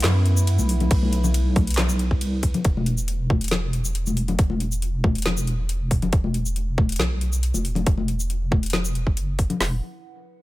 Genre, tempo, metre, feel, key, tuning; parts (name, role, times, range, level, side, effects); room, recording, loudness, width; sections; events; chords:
deep dubstep; 138 BPM; 4/4; half-time; A4 = 440 Hz
dark analog pad; sustained chords; 0.0-2.6, 9.8 s; B3 to B4; -34 LUFS; right 1 dB; chorus, phaser, vintage 12-bit sampler grit
deep soft wobble bass; bass; 0.0-9.8 s; E1 to F#2; -23 LUFS; equal; chorus, tube saturation
garage drum kit; drums; 0.0-9.6 s; handclaps, hi-hat, ride cymbal, shaker, snare drum; -28 LUFS; equal
congas; percussion; 0.0-9.6 s; -28 LUFS; left 4 dB; dub echo
garage drum kit; drums; 0.9-9.7 s; hi-hat, kick drum, snare drum; -20 LUFS; equal
digital ambience; -20 LUFS; side -18 dB against mid
0.0-2.6 A section; 2.6-9.6 B section
drop 0.0-2.6; filter sweep on wobble bass 2.6-9.6
0.0 B5; 2.6 E5